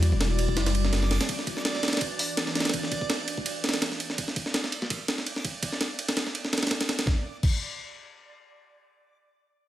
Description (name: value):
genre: drum and bass, jungle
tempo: 166 BPM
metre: 4/4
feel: swing 54% on 16ths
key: unclear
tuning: A4 = 440 Hz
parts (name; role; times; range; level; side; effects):
- warbly tape-like pad; sustained chords; 0.0-4.2 s; E3 to D5; -34 LUFS; left 3 dB; chorus, built-in reverb, phaser, vintage 12-bit sampler grit
- soft dub sub bass; bass; 0.0-1.2 s; E1 to E2; -24 LUFS; equal; tube saturation
- breakbeat sampler-style drum kit; drums; 0.0-7.5 s; crash cymbal, hi-hat, kick drum, ride cymbal, snare drum; -27 LUFS; equal; high-pass filter on cymbals, studio reverb, high-pass filter on kick, high-pass filter on snare, high-pass filter on hats
- backwards swelling texture; texture; 0.0-7.1 s; D5; -38 LUFS; right 4 dB; built-in reverb
room: little or no reverb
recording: none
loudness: -25 LUFS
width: side -13 dB against mid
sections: 0.0-7.1 A section; 7.1-9.7 B section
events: none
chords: 0.0 Em9; 1.3 Bm/E; 7.1 N.C.